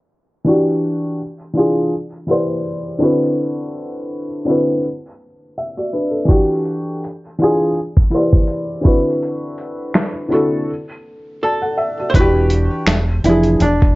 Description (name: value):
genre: lo-fi hip hop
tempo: 82 BPM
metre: 4/4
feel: swing 56% on 16ths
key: E minor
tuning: A4 = 440 Hz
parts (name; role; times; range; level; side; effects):
- felt-muted upright piano; accompaniment; 0.4-13.6 s; D3 to F#5; -17 LUFS; equal; cassette tape
- dusty soul sampler-style drum kit; drums; 6.3-14.0 s; finger snaps, hi-hat, kick drum, snare drum; -13 LUFS; equal; none
- archtop guitar, miked and amplified; melody; 11.4-14.0 s; D4 to C5; -19 LUFS; right 1 dB; none
- deep dub fingered electric bass; bass; 12.1-14.0 s; E1 to F1; -17 LUFS; equal; none
room: moderate studio reverb, RT60 0.7 s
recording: worn, warbling old tape, cassette tape, warbly pitch drift, low-pass filter, nothing above 7.6 kHz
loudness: -15 LUFS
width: side -20 dB against mid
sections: 0.4-12.1 A section; 12.1-14.0 B section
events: filter sweep 0.4-12.1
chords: 0.4 Em9; 1.2 E7b9; 1.9 Cmaj9/E; 3.0 D13; 4.8 N.C.; 6.3 Em9; 7.0 E7b9; 7.8 Cmaj9/E; 8.9 D13; 10.7 N.C.; 12.1 Em9; 12.9 E7b9